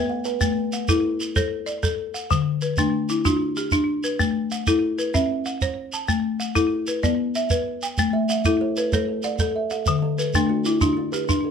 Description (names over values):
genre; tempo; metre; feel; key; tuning
southern african traditional, mbira-style interlocking cycle; 127 BPM (dotted quarters); 12/8; straight; A equiheptatonic; A4 = 441 Hz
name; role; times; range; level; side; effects
folk marimba with hard mallets; arpeggios; 0.0-11.5 s; D3 to A5; -22 LUFS; left 3 dB; slapback echo
kalimba; arpeggios; 0.0-0.6, 8.1-11.5 s; D3 to G5+29c; -27 LUFS; right 7 dB; none
shekere; percussion; 0.2-11.4 s; none; -26 LUFS; right 3 dB; none
room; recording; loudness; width
light reverb; none; -20 LUFS; side -7 dB against mid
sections
0.4-11.5 A section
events
none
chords
0.4 Am; 2.3 D; 4.2 A5; 5.1 C; 6.1 A5; 7.0 Bm; 8.0 Am; 9.9 D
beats
| 0.40 0.88 1.35 1.82 | 2.30 2.77 3.25 3.72 | 4.19 4.67 5.14 5.61 | 6.08 6.56 7.03 7.50 | 7.98 8.45 8.92 9.39 | 9.87 10.34 10.81 11.29